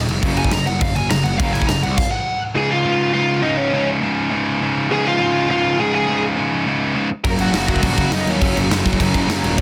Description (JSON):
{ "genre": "punk rock", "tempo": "205 BPM", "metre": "4/4", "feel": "straight", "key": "Db major", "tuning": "A4 = 441 Hz", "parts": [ { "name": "biting overdriven guitar", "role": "riff", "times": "0.0-9.6 s", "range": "Db2 to Gb3", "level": "-22 LUFS", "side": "equal", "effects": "none" }, { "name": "distorted electric guitar", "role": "riff", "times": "0.0-1.8, 7.2-9.6 s", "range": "Gb2 to Gb3", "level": "-26 LUFS", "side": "equal", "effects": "distortion" }, { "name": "fuzz picked electric bass", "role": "bass", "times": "0.0-2.0, 7.2-9.6 s", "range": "Eb1 to Gb2", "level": "-25 LUFS", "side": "equal", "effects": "overdrive" }, { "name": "big rock drum kit", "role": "drums", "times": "0.1-2.0, 7.2-9.6 s", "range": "crash cymbal, kick drum, snare drum", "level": "-23 LUFS", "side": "equal", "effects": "none" }, { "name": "high-gain lead guitar", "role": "melody", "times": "0.4-9.6 s", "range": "Db4 to Bb5", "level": "-22 LUFS", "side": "equal", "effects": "distortion" } ], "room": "little or no reverb", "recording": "dense, heavily limited modern master", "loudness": "-18 LUFS", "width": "mono", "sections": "0.0-2.6 A section; 2.6-9.6 B section", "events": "lead electric guitar solo 0.0-2.6; stop 2.0-2.6", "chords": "0.2 Gb5; 2.6 Db; 7.1 Gb5" }